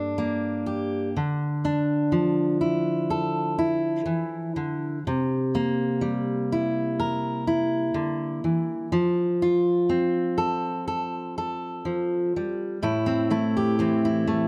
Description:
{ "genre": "folk", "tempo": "62 BPM", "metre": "4/4", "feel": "straight", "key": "unclear", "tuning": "A4 = 440 Hz", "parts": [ { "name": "fingerpicked steel-string acoustic guitar", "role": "solo", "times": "0.0-14.5 s", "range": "G2 to Bb4", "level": "-25 LUFS", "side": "equal", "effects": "none" } ], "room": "light reverb", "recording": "close, detailed microphones", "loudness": "-25 LUFS", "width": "mono", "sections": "0.0-12.8 A section; 12.8-14.5 B section", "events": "none", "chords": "0.0 Gm; 1.1 Dmadd9; 5.0 C7; 8.9 F; 12.8 Am" }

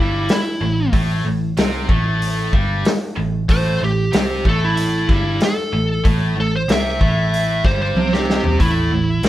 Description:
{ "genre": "blues rock power trio and southern rock", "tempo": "94 BPM", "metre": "4/4", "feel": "straight", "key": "unclear", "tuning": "A4 = 439 Hz", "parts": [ { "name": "biting lead guitar", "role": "melody", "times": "0.0-9.3 s", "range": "E4 to E5", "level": "-21 LUFS", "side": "right 1 dB", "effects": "overdrive" }, { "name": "tight distorted guitar", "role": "riff", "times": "0.0-9.3 s", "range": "G2 to C4", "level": "-23 LUFS", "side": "right 1 dB", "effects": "distortion" }, { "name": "vintage muted picked electric bass", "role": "bass", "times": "0.0-9.3 s", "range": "G1 to C2", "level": "-20 LUFS", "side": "equal", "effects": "none" }, { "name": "vintage drum kit", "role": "drums", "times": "0.3-9.3 s", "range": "hi-hat, kick drum, snare drum, toms", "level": "-19 LUFS", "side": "equal", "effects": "none" } ], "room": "light reverb", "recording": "band playing live in one room", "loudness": "-15 LUFS", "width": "side -14 dB against mid", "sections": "0.0-9.3 A section", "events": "drum fill 8.0-8.6", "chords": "0.0 A5" }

